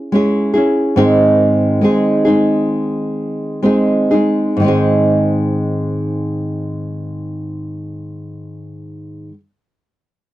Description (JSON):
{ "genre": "pop", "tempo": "62-73 BPM", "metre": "4/4", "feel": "straight", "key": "Ab major", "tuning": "A4 = 441 Hz", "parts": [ { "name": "nylon-string guitar", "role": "solo", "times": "0.0-9.4 s", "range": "Ab2 to Ab4", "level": "-14 LUFS", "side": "equal", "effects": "none" } ], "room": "moderate booth ambience, RT60 0.2 s", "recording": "dry, close 1970s-style studio recording", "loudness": "-13 LUFS", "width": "side -15 dB against mid", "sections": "0.0-4.6 A section; 4.6-8.4 B section", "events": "slowing down 0.0-4.6", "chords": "0.0 Dbm; 1.0 Ab", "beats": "0.12 | 0.96 1.82 2.70 3.63 | 4.59 5.56 6.52 7.47" }